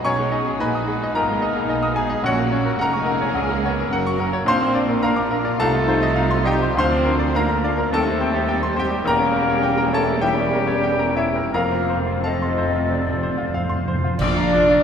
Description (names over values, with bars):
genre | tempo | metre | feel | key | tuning
classical, romantic movement for piano and orchestra | 82-113 BPM | 4/4 | rubato | F# major, Bb major from 4.5 s | A4 = 442 Hz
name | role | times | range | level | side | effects
bright grand piano | melody | 0.0-14.8 s | A#1 to D#6 | -23 LUFS | left 2 dB | none
muted studio violin section | melody | 0.0-14.8 s | C4 to D6 | -33 LUFS | left 4 dB | none
dark clarinet | second line | 0.0-14.8 s | C4 to D5 | -29 LUFS | left 2 dB | none
muted symphonic violin section | second line | 0.0-14.8 s | A#3 to F5 | -30 LUFS | left 3 dB | none
small flute group | second line | 0.0-14.8 s | C5 to G#5 | -29 LUFS | left 3 dB | none
muted symphonic viola section | accompaniment | 0.0-14.8 s | F3 to F4 | -30 LUFS | right 4 dB | none
warm French horn section | sustained chords | 0.0-14.8 s | E3 to D4 | -25 LUFS | left 2 dB | none
muted symphonic cello section | bass | 0.0-14.8 s | C#2 to F3 | -28 LUFS | right 4 dB | none
muted symphonic double bass section | bass | 0.0-14.8 s | E1 to Eb2 | -28 LUFS | right 5 dB | none
warm oboe | second line | 0.1-14.8 s | E4 to F5 | -29 LUFS | right 2 dB | none
timpani | percussion | 2.2-3.0, 11.5-14.8 s | F2 to A#2 | -27 LUFS | equal | none
clash cymbals and concert bass drum | percussion | 14.2-14.8 s | none | -28 LUFS | right 1 dB | none
room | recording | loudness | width
wet concert hall reverb, RT60 1.9 s | none | -18 LUFS | side -7 dB against mid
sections
0.0-14.2 A section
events
timpani fill 11.5-14.2; band accent 14.2-14.8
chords
0.0 G#m; 2.2 F#; 4.5 Bb; 5.6 F7/C; 6.8 Bb/D; 7.9 Cm/Eb; 9.1 Edim7; 11.5 F; 14.2 Bb